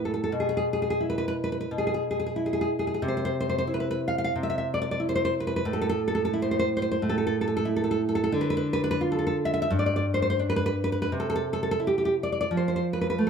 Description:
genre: romantic piece for solo classical guitar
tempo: 89 BPM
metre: 4/4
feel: rubato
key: A minor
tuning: A4 = 440 Hz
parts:
  - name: nylon-string guitar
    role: solo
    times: 0.0-13.3 s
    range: G2 to F5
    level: -24 LUFS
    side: equal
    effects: none
room: light reverb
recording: close, detailed microphones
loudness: -24 LUFS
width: side -6 dB against mid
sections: 0.0-13.3 A section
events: none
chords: 0.3 E5/B; 3.0 Cmaj7; 5.7 A5; 8.4 Dm; 9.7 G5; 11.1 C; 12.5 F

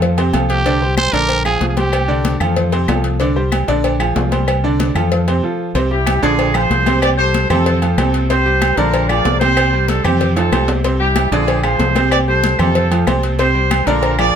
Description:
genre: latin, salsa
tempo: 188 BPM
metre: 4/4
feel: straight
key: unclear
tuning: A4 = 439 Hz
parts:
  - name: bright upright piano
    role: accompaniment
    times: 0.0-14.4 s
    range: C3 to D5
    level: -19 LUFS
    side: right 1 dB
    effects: none
  - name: deep dub fingered electric bass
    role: bass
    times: 0.0-14.3 s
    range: Bb1 to F2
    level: -18 LUFS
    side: equal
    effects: none
  - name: congas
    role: percussion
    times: 0.0-14.3 s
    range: none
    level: -24 LUFS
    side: left 4 dB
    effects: none
  - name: cowbell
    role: percussion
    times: 0.0-14.2 s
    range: none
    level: -24 LUFS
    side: left 4 dB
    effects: none
  - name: agogo bells and timbales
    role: percussion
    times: 0.2-14.3 s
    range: none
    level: -23 LUFS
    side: right 5 dB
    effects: none
  - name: growling trumpet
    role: melody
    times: 0.5-2.4 s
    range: G4 to C5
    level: -18 LUFS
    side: right 2 dB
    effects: none
  - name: claves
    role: percussion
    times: 1.0-14.3 s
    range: none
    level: -28 LUFS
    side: left 7 dB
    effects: none
  - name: warm horn section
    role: melody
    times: 5.9-14.4 s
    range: C4 to D5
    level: -18 LUFS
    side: right 1 dB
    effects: tape echo
room: little or no reverb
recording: close, detailed microphones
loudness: -13 LUFS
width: side -8 dB against mid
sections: 0.0-5.8 A section; 5.8-14.4 B section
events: break 5.4-5.8; drum fill 10.4-10.8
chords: 0.0 F; 0.7 Csus2; 1.3 Bb7; 1.9 Csus2; 2.6 F; 3.2 Csus2; 3.8 Bb7; 4.5 Csus2; 5.1 F; 5.8 Csus2; 6.4 Bb7; 7.0 C5; 7.7 F; 8.3 Csus2; 8.9 Bb7; 9.6 Csus2; 10.2 F; 10.8 Csus2; 11.5 Bb7; 12.1 C5; 12.8 F; 13.4 Csus2

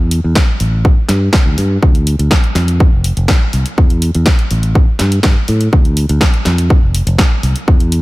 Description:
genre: filtered disco house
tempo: 123 BPM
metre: 4/4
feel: straight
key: D minor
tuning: A4 = 439 Hz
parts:
  - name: fingered electric bass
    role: bass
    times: 0.0-8.0 s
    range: F1 to A2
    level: -13 LUFS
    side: equal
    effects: sidechain pumping, low-pass filter
  - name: punchy analog drum machine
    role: drums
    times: 0.1-8.0 s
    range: hi-hat, snare drum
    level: -18 LUFS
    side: equal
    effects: sidechain pumping on hats
  - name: electronic kick drum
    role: drums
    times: 0.4-7.8 s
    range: none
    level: -10 LUFS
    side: equal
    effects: none
room: little or no reverb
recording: none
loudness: -10 LUFS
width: side -20 dB against mid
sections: 0.0-8.0 A section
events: filter sweep on fingered electric bass 0.0-8.0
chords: none

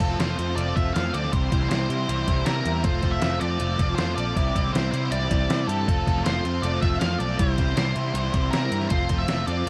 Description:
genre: indie rock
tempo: 158 BPM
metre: 4/4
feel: straight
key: F major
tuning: A4 = 440 Hz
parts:
  - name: octave-fuzz lead guitar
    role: melody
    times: 0.0-9.7 s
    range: A4 to F5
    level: -31 LUFS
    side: equal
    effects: distortion, plate reverb, analog delay
  - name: crunchy overdriven guitar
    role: riff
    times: 0.0-9.7 s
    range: F3 to A4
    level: -34 LUFS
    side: equal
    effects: spring reverb
  - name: overdriven electric guitar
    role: riff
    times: 0.0-9.7 s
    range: C3 to F4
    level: -33 LUFS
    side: equal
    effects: ensemble chorus
  - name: picked electric bass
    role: bass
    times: 0.0-9.7 s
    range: F1 to C3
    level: -29 LUFS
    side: equal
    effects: none
  - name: detuned 8-bit digital drum machine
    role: drums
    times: 0.0-9.7 s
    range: hi-hat, kick drum, snare drum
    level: -28 LUFS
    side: equal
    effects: none
room: light reverb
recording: dark, warm production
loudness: -24 LUFS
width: mono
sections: 0.0-9.7 A section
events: none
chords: 0.0 F; 1.3 C; 2.8 F; 4.4 Cadd9; 5.9 F; 7.4 C; 8.9 F

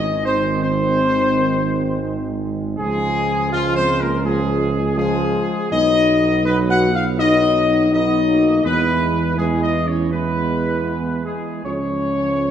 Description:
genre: classical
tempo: 82 BPM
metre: 4/4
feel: straight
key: unclear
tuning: A4 = 440 Hz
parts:
  - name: dark trumpet section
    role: melody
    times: 0.0-12.5 s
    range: F4 to Gb5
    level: -20 LUFS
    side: left 1 dB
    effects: none
  - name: bright trombone section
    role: sustained chords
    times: 0.0-12.5 s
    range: Eb3 to Cb4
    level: -26 LUFS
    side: right 3 dB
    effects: none
  - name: dark French horn section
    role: sustained chords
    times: 0.0-12.5 s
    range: F3 to Gb4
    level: -22 LUFS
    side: left 3 dB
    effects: none
  - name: mellow tuba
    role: bass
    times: 0.0-12.5 s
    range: Ab1 to E2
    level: -22 LUFS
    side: right 3 dB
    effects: none
room: wet scoring stage reverb, RT60 1.9 s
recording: none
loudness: -16 LUFS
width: side -9 dB against mid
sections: 0.0-12.5 A section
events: none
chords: 0.0 Ab; 2.8 Db; 5.7 Cb; 8.6 E; 11.6 Db

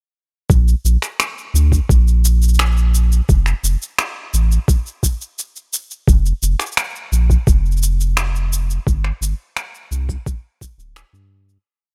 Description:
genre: folktronica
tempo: 86 BPM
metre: 4/4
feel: straight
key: unclear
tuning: A4 = 440 Hz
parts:
  - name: warm sub bass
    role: bass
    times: 0.5-11.6 s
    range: D1 to G2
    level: -17 LUFS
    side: equal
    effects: none
  - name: electronic kick drum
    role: drums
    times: 0.5-10.8 s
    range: none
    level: -16 LUFS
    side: equal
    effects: none
  - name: electronic shaker and finger snaps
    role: drums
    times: 0.5-11.6 s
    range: none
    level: -24 LUFS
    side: equal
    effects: none
room: little or no reverb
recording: none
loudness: -17 LUFS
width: mono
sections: 0.5-11.7 groove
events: fade-out 7.9-11.7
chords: none

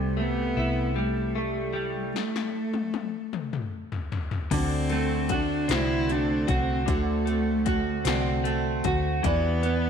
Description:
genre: six-eight pop ballad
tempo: 51 BPM (dotted quarters)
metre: 6/8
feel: straight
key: unclear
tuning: A4 = 440 Hz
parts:
  - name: dark cello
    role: melody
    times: 0.0-9.9 s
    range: G3 to E4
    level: -30 LUFS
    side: equal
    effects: none
  - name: direct-recorded clean electric guitar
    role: accompaniment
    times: 0.0-9.9 s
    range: C3 to F#4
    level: -28 LUFS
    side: right 1 dB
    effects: double-tracked left and right
  - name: vintage muted fingered electric bass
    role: bass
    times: 0.0-9.9 s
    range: C2 to E2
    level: -29 LUFS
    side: equal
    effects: none
  - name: 80s electronic pad drums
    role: drums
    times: 2.2-9.8 s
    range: crash cymbal, hi-hat, kick drum, snare drum, toms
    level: -31 LUFS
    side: left 4 dB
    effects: gated reverb on snare and toms
  - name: picked steel-string acoustic guitar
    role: arpeggios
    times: 4.5-9.9 s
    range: D3 to B4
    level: -32 LUFS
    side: right 1 dB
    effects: none
room: moderate echo chamber reverb, RT60 2.2 s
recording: 1960s-style stereo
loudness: -24 LUFS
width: side -7 dB against mid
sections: 0.0-4.5 A section; 4.5-9.9 B section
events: drum fill 2.1-4.5; stop 2.1-4.5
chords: 0.0 C6; 2.1 N.C.; 4.5 D7; 9.2 Em7

